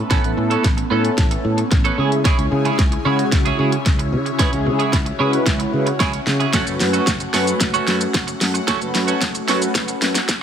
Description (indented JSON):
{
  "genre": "dance-pop",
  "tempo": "112 BPM",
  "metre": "4/4",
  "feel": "straight",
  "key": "unclear",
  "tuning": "A4 = 440 Hz",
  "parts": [
    { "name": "airy breathy pad", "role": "sustained chords", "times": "0.0-10.4 s", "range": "C#3 to G#4", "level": "-25 LUFS", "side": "left 1 dB", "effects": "chorus, phaser, sidechain pumping" },
    { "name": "mellow synth brass", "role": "accompaniment", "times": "0.1-10.2 s", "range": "G#3 to B4", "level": "-24 LUFS", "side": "equal", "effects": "chorus, sidechain pumping" },
    { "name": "twelve-string electric guitar", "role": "riff", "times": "0.1-10.3 s", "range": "A3 to A4", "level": "-23 LUFS", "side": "right 7 dB", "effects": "wide subtle chorus" },
    { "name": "fretless electric bass", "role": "bass", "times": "0.1-10.4 s", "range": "F#1 to C#3", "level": "-22 LUFS", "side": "equal", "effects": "sidechain pumping" },
    { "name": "pop drum kit", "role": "drums", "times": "0.1-10.4 s", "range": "hi-hat, kick drum, shaker, snare drum", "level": "-19 LUFS", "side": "equal", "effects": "none" }
  ],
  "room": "light reverb, digital ambience",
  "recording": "high-pass filter",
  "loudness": "-16 LUFS",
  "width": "side -8 dB against mid",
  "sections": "0.0-10.4 A section",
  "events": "build-up 0.0-10.4; drum fill 0.0-10.4; filter sweep 0.0-10.4",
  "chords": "0.0 Aadd9; 2.0 C#m; 6.5 F#m",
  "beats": "| 0.11 0.64 1.18 1.72 | 2.25 2.79 3.32 3.86 | 4.39 4.93 5.46 6.00 | 6.54 7.07 7.61 8.14 | 8.68 9.21 9.75 10.29"
}